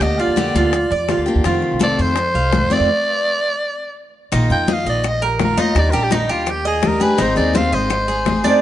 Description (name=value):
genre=latin, Cuban son and guajira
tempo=167 BPM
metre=4/4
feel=straight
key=unclear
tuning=A4 = 439 Hz
part: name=raspy soprano saxophone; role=melody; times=0.0-8.6 s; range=Eb4 to G5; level=-20 LUFS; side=equal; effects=none
part: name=picked steel-string acoustic guitar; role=accompaniment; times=0.0-8.6 s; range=C3 to Ab4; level=-22 LUFS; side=left 3 dB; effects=none
part: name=Cuban tres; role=arpeggios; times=0.0-8.6 s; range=D4 to F5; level=-21 LUFS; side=right 3 dB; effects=none
part: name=upright bass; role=bass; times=0.0-8.4 s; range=Ab1 to F2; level=-21 LUFS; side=equal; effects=none
part: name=bongos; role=percussion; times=0.0-8.6 s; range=none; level=-26 LUFS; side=left 7 dB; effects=none
part: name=congas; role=percussion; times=0.0-8.6 s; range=none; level=-23 LUFS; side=left 2 dB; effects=none
room=light reverb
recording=nothing above 10.8 kHz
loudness=-15 LUFS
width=side -12 dB against mid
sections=0.0-4.3 A section; 4.3-8.6 B section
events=stop 2.9-4.3; soprano saxophone solo 4.3-8.6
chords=0.0 Bb6/D; 1.4 F7; 2.9 N.C.; 4.3 Bbsus4; 5.8 Ebmaj7; 7.2 Ab